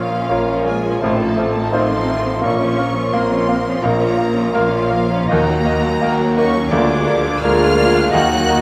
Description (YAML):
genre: classical, romantic movement for piano and orchestra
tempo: 85 BPM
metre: 4/4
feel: rubato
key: Bb minor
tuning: A4 = 440 Hz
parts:
  - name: bright grand piano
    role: melody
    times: 0.0-8.6 s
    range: A1 to C5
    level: -22 LUFS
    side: equal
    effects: none
  - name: clear symphonic violin section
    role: melody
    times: 0.0-8.6 s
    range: F5 to Gb6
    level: -30 LUFS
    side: equal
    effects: none
  - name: dark cor anglais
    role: second line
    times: 0.0-8.6 s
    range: F4 to Gb5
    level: -28 LUFS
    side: equal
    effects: none
  - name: rich studio violin section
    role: second line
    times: 0.0-8.6 s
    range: Bb3 to Db5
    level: -30 LUFS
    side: equal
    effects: none
  - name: warm clarinet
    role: second line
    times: 0.0-8.6 s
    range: Bb4 to Eb5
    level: -30 LUFS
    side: equal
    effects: none
  - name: mellow bassoon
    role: accompaniment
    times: 0.0-8.6 s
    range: A3 to Bb3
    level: -27 LUFS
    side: equal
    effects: none
  - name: rich symphonic viola section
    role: accompaniment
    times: 0.0-8.6 s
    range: Eb3 to D4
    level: -27 LUFS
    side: equal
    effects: none
  - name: mellow French horn section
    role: sustained chords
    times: 0.0-8.6 s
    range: Bb3 to Gb4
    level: -28 LUFS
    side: equal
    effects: none
  - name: warm trombone section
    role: sustained chords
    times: 0.0-8.6 s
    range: D3 to Bb3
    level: -29 LUFS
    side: equal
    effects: none
  - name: clear symphonic double bass section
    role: bass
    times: 0.0-8.6 s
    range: A1 to Eb2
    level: -28 LUFS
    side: equal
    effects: none
  - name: rich symphonic cello section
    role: bass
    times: 0.0-8.6 s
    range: F3 to Gb4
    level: -27 LUFS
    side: equal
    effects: none
  - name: mellow hollow small flute group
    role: second line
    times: 0.3-8.6 s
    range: Bb5 to Ab6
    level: -36 LUFS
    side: equal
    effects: none
room: wet scoring stage reverb, RT60 1.7 s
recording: none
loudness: -16 LUFS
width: mono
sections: 0.0-8.6 A section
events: none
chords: 0.0 Bbm; 1.0 F7/A; 2.4 Bbm; 5.3 Ebm; 6.7 Bb7/D